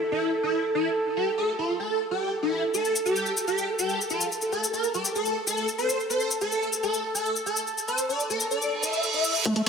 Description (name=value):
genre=psychedelic trance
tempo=143 BPM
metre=4/4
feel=straight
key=A phrygian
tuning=A4 = 440 Hz
part: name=bubbling stepped-filter texture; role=sustained chords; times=0.0-9.7 s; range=A4 to C5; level=-29 LUFS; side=right 2 dB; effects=chorus, built-in reverb, sidechain pumping
part: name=swarming rave lead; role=melody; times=0.1-9.3 s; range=E4 to E5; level=-27 LUFS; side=left 1 dB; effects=chorus, phaser, sidechain pumping, digital delay
part: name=cabasa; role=percussion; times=2.7-9.4 s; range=none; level=-30 LUFS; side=left 3 dB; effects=none
part: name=reverse cymbal and riser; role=sound effects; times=8.7-9.7 s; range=none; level=-27 LUFS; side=right 5 dB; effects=none
part: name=overdriven acid bass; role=riff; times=9.5-9.7 s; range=A3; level=-24 LUFS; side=equal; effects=distortion, auto-pan, sidechain pumping
part: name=electronic hi-hat and woodblock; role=drums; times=9.5-9.7 s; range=none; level=-26 LUFS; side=right 1 dB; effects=high-pass filter on hats, low-pass filter on hats, studio ambience, high-pass filter on perc, low-pass filter on perc
part: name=electronic kick drum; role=drums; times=9.5 s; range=none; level=-30 LUFS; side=equal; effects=high-pass filter on kick, studio ambience
room=moderate lush hall reverb, RT60 2.1 s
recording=none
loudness=-24 LUFS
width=side -6 dB against mid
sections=0.0-9.5 A section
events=filter sweep on synth texture 0.0-9.5; reverse cymbal 8.7-9.5; riser 9.5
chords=none